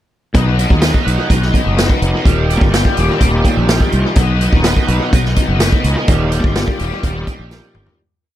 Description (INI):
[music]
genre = psychedelic rock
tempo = 126 BPM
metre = 4/4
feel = straight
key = unclear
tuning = A4 = 440 Hz
[part]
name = raw garage guitar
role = riff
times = 0.3-8.0 s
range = Eb2 to B4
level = -18 LUFS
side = left 1 dB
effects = overdrive, rotary speaker
[part]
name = fuzz fingered electric bass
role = bass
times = 0.3-7.9 s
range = Eb1 to D#2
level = -16 LUFS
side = equal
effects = overdrive
[part]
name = vintage drum kit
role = drums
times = 0.3-8.0 s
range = hi-hat, kick drum, snare drum, toms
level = -15 LUFS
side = equal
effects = tape echo
[part]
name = tambourine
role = percussion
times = 0.4-7.8 s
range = none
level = -36 LUFS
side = right 13 dB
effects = none
[sound]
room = little or no reverb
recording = echo-heavy mix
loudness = -12 LUFS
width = side -12 dB against mid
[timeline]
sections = 0.3-8.0 pre-chorus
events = fade-out 6.1-8.0; drum fill 7.5-8.0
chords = 0.3 B; 2.3 Eb; 4.2 B; 6.1 Eb